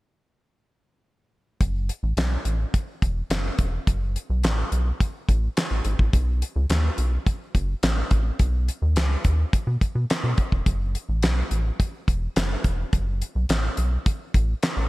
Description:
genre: early-eighties boogie funk.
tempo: 106 BPM.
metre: 4/4.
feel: straight.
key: F# dorian.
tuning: A4 = 440 Hz.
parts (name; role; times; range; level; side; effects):
rubbery square bass; bass; 1.6-14.9 s; E1 to B2; -23 LUFS; equal; none.
damped 70s drum kit; drums; 1.6-14.8 s; handclaps, hi-hat, kick drum, snare drum; -23 LUFS; equal; none.
room: light reverb.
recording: none.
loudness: -21 LUFS.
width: side -20 dB against mid.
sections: 1.6-14.9 A section.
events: none.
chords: none.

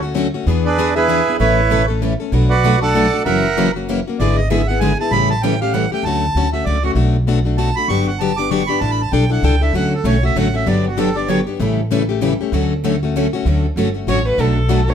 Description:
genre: acoustic string swing (jazz manouche).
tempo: 194 BPM.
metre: 3/4.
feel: swing 59% on 8ths.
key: D major.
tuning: A4 = 441 Hz.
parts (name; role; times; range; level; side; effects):
picked plugged-in steel-string acoustic guitar; accompaniment; 0.0-14.9 s; B2 to A4; -19 LUFS; left 7 dB; none.
upright bass; bass; 0.0-14.9 s; F#1 to E2; -19 LUFS; equal; none.
picked steel-string acoustic guitar; accompaniment; 0.2-5.8, 9.8-14.8 s; B2 to B4; -23 LUFS; right 6 dB; none.
accordion; second line; 0.7-11.4 s; D4 to D6; -19 LUFS; right 5 dB; none.
warm violin; melody; 14.1-14.9 s; A4 to C#5; -19 LUFS; equal; none.
room: moderate studio reverb, RT60 0.8 s.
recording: none.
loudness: -14 LUFS.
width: side -8 dB against mid.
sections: 0.0-6.0 A section; 6.0-13.5 A section; 13.5-14.9 A section.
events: accordion solo 0.0-13.5; violin solo 13.5-14.9.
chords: 0.5 E7; 1.4 Aadd9; 2.3 Bm7; 3.3 F#7; 4.2 E7/G#; 5.1 A7; 6.0 Dmaj7; 7.0 Bm7; 7.9 Gmaj7; 8.8 A7sus4; 9.7 Dmaj7; 10.7 Gmaj7; 11.6 A7; 12.5 Dmaj7; 14.4 Bm7.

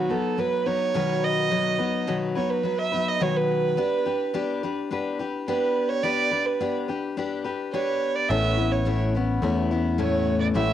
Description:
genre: acoustic folk duo or small band.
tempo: 106 BPM.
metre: 4/4.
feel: straight.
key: unclear.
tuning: A4 = 437 Hz.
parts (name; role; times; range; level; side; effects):
dark fiddle; melody; 0.0-10.7 s; F#4 to E5; -25 LUFS; right 6 dB; cassette tape.
picked steel-string acoustic guitar; accompaniment; 0.0-10.7 s; A2 to B4; -26 LUFS; left 5 dB; cassette tape.
picked electric bass; bass; 8.3-10.7 s; A1 to E2; -25 LUFS; equal; none.
room: moderate spring reverb, RT60 1.4 s, studio ambience.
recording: home recording on cassette.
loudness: -22 LUFS.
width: side -11 dB against mid.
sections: 0.0-10.7 A section.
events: fiddle solo 0.0-10.7.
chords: 0.0 B; 3.8 G/B; 8.3 Aadd9.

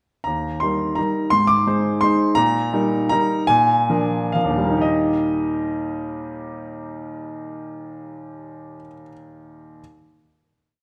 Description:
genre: classical, piano waltz.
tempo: 118-179 BPM.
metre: 3/4.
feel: rubato.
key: Eb major.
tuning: A4 = 440 Hz.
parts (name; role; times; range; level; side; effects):
clear grand piano; solo; 0.2-9.8 s; Eb2 to D6; -21 LUFS; equal; none.
room: wet recital hall reverb, RT60 1.4 s.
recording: none.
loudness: -20 LUFS.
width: mono.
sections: 0.3-4.8 A section; 4.8-7.7 final chord.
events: slowing down 1.8-4.8.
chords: 0.3 Eb; 1.3 Ab; 2.4 Eb/Bb; 3.5 Bb7; 4.8 Eb.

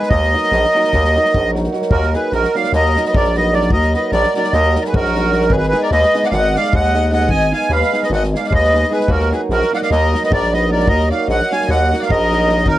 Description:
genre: balkan folk, Balkan wedding band.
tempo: 301 BPM (eighths).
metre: 9/8.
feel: straight.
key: Eb harmonic minor.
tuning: A4 = 440 Hz.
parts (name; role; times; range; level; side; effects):
accordion; melody; 0.0-12.8 s; Bb4 to Ab5; -16 LUFS; right 2 dB; light tremolo tuning.
warm violin; second line; 0.0-12.8 s; Eb4 to F5; -24 LUFS; left 7 dB; none.
hammered dulcimer; accompaniment; 0.0-12.7 s; Gb3 to Ab4; -20 LUFS; right 2 dB; none.
natural country drum kit; percussion; 0.0-12.8 s; kick drum, snare drum; -22 LUFS; equal; none.
growling FM bass; bass; 0.1-12.8 s; Ab1 to Eb2; -18 LUFS; equal; none.
room: little or no reverb.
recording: dry, close 1970s-style studio recording.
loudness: -13 LUFS.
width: side -14 dB against mid.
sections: 0.0-1.9 A section; 1.9-12.8 A section.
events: none.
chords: 0.1 Ebm; 5.5 Abm; 9.1 Ebm.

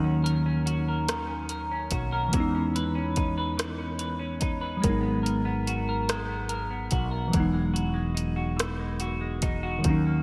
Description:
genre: slow six-eight R&B.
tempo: 48 BPM (dotted quarters).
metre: 6/8.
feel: straight.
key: unclear.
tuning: A4 = 439 Hz.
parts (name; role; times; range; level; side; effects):
semi-hollow electric guitar; second line; 0.0-10.2 s; D#3 to B4; -34 LUFS; equal; lush chorus, delay.
mellow tine electric piano; accompaniment; 0.0-10.2 s; D#3 to A#4; -32 LUFS; equal; none.
mellow fretless electric bass; bass; 0.0-10.2 s; E1 to E2; -34 LUFS; equal; none.
smooth R&B drum kit; drums; 0.3-10.0 s; hi-hat, kick drum, rim click; -33 LUFS; equal; overdrive, gated reverb.
room: moderate lush hall reverb, RT60 2.8 s.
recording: bright 1980s-style digital production.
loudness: -28 LUFS.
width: mono.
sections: 0.0-10.2 A section.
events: none.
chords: 0.0 D#m7; 2.3 C#m9/E; 4.8 G#m9; 7.3 Emaj9.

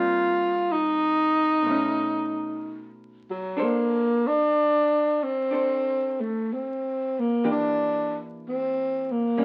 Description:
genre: jazz ballad.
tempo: 62 BPM.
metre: 4/4.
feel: swing 67% on 8ths.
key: unclear.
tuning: A4 = 443 Hz.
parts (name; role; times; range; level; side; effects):
breathy tenor saxophone; melody; 0.0-9.4 s; F#3 to F4; -25 LUFS; equal; none.
archtop guitar, miked and amplified; accompaniment; 0.0-9.4 s; A2 to C5; -34 LUFS; equal; none.
room: moderate studio reverb, RT60 0.7 s.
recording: very old 78 rpm record, vinyl crackle.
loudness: -25 LUFS.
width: mono.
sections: 0.0-9.4 A section.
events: none.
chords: 0.0 Cm7; 1.6 B9; 3.6 Amadd11; 7.4 Em7b5.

